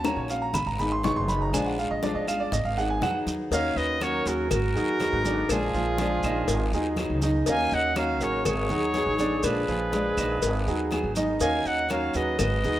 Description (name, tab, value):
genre	latin, Cuban son and guajira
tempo	122 BPM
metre	4/4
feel	straight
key	Eb minor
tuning	A4 = 440 Hz
part	fingerpicked steel-string acoustic guitar	accompaniment	0.0-12.8 s	Eb3 to Ab4	-30 LUFS	left 2 dB	none
part	clear concert grand piano	arpeggios	0.0-12.8 s	D3 to Db6	-30 LUFS	right 4 dB	none
part	upright bass	bass	0.0-12.8 s	Gb1 to F2	-30 LUFS	equal	none
part	bongos and cowbell	percussion	0.0-12.6 s	none	-33 LUFS	left 6 dB	none
part	congas	percussion	0.0-12.8 s	none	-36 LUFS	left 1 dB	none
part	guiro	percussion	0.0-12.8 s	none	-44 LUFS	left 2 dB	none
part	claves	percussion	0.1-12.6 s	none	-39 LUFS	right 1 dB	none
part	maracas	percussion	0.1-12.8 s	none	-38 LUFS	right 4 dB	none
part	warm trumpet	melody	3.5-12.8 s	Ab4 to Ab5	-29 LUFS	right 1 dB	none
part	bright reedy wooden flute	second line	3.5-12.8 s	F4 to F5	-32 LUFS	right 2 dB	none
room	light reverb, small room ambience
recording	rough home demo mix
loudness	-23 LUFS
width	side -13 dB against mid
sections	0.0-3.5 A section; 3.5-12.8 B section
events	grand piano solo 0.0-3.5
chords	0.0 Ebm7; 0.5 Abm7; 1.5 Bb7; 2.5 Abm7; 3.5 Ebm7; 4.5 Abm7; 5.5 Bb7; 6.5 Abm7; 7.5 Ebm7; 8.5 Abm7; 9.4 Bb7b9; 10.4 Abm7; 11.4 Ebm7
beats	0.05 0.55 1.04 | 1.54 2.03 2.52 3.02 | 3.51 4.01 4.50 5.00 | 5.49 5.99 6.48 6.97 | 7.46 7.96 8.45 8.95 | 9.44 9.93 10.42 10.92 | 11.41 11.90 12.39